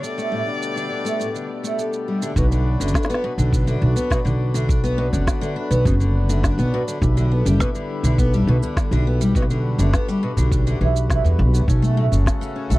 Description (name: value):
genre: folktronica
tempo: 103 BPM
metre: 4/4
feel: straight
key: B minor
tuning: A4 = 440 Hz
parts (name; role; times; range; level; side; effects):
- warm violin; melody; 0.0-1.7 s; D5; -30 LUFS; left 4 dB; tape echo
- hand-pumped harmonium; sustained chords; 0.0-12.8 s; B2 to B4; -30 LUFS; left 3 dB; none
- picked twelve-string acoustic guitar; arpeggios; 0.0-12.8 s; A2 to A4; -24 LUFS; equal; tape echo
- electronic shaker and snare drum; drums; 0.0-12.8 s; none; -29 LUFS; right 1 dB; none
- upright bass; bass; 2.4-12.8 s; F#1 to E2; -18 LUFS; equal; tube saturation
- electronic kick drum; drums; 2.4-12.4 s; none; -22 LUFS; equal; none
room: little or no reverb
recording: dry, close 1970s-style studio recording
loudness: -17 LUFS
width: side -18 dB against mid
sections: 0.0-2.4 A section; 2.4-12.8 B section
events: none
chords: 0.0 Gsus2; 2.4 Bm; 7.0 Em7; 11.7 F#m